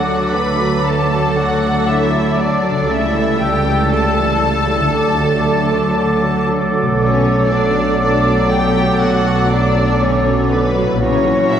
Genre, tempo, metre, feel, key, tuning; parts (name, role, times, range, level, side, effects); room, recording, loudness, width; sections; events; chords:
classical, slow romantic movement for symphony orchestra; 59 BPM; 4/4; rubato; D major; A4 = 441 Hz
warm symphonic violin section; melody; 0.0-11.6 s; B4 to B5; -22 LUFS; left 4 dB
dark clarinet; second line; 0.0-11.6 s; A3 to E4; -25 LUFS; left 1 dB
rich symphonic violin section; second line; 0.0-11.6 s; B3 to B4; -24 LUFS; left 1 dB
small flute group; second line; 0.0-11.6 s; C#6 to E6; -23 LUFS; right 1 dB
warm oboe; second line; 0.0-11.6 s; F#4 to A4; -24 LUFS; right 2 dB
dark symphonic viola section; accompaniment; 0.0-11.6 s; C#3 to C#4; -22 LUFS; right 2 dB
mellow bassoon; accompaniment; 0.0-11.6 s; F#3 to G3; -24 LUFS; left 2 dB
mellow French horn section; sustained chords; 0.0-11.6 s; F#3 to A4; -22 LUFS; right 1 dB
concert harp; arpeggios; 0.0-11.6 s; A#2 to C#5; -27 LUFS; left 2 dB
rich symphonic cello section; bass; 0.0-11.6 s; A#2 to D3; -23 LUFS; right 3 dB
rich symphonic double bass section; bass; 0.0-11.6 s; A#1 to D2; -23 LUFS; right 3 dB
wet concert hall reverb, RT60 2.2 s; heard from further back in the room; -13 LUFS; side -9 dB against mid
0.0-11.6 A section
0.0 D; 2.9 A7/C#; 4.9 D; 7.0 Bm7; 11.0 F#7/A#